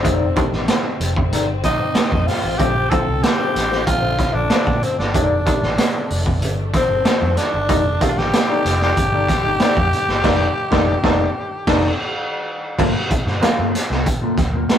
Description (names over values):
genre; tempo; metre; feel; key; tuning
funk; 94 BPM; 4/4; straight; unclear; A4 = 440 Hz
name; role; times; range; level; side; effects
growling tenor saxophone; melody; 0.0-12.1 s; C4 to A4; -21 LUFS; left 1 dB; none
mellow electric guitar; accompaniment; 0.0-14.8 s; Bb3 to Eb5; -22 LUFS; left 3 dB; none
warm studio string section; sustained chords; 0.0-12.7 s; D3 to D4; -30 LUFS; left 1 dB; none
muted clav; stabs; 0.0-14.0 s; D3 to Eb4; -23 LUFS; right 2 dB; phaser
vintage muted fingered electric bass; bass; 0.0-14.7 s; F1 to Bb2; -23 LUFS; equal; none
raw garage drum kit; drums; 0.0-14.8 s; crash cymbal, hi-hat, kick drum, snare drum; -19 LUFS; right 1 dB; none
congas; percussion; 0.0-14.8 s; none; -33 LUFS; right 4 dB; none
room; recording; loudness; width
moderate studio reverb, RT60 0.6 s; rough rehearsal-room recording; -16 LUFS; side -9 dB against mid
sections
0.0-12.8 A section; 12.8-14.8 B section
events
band accent 10.2-12.8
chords
0.0 F13; 2.6 Bbmaj9; 5.1 F13; 12.8 Gm9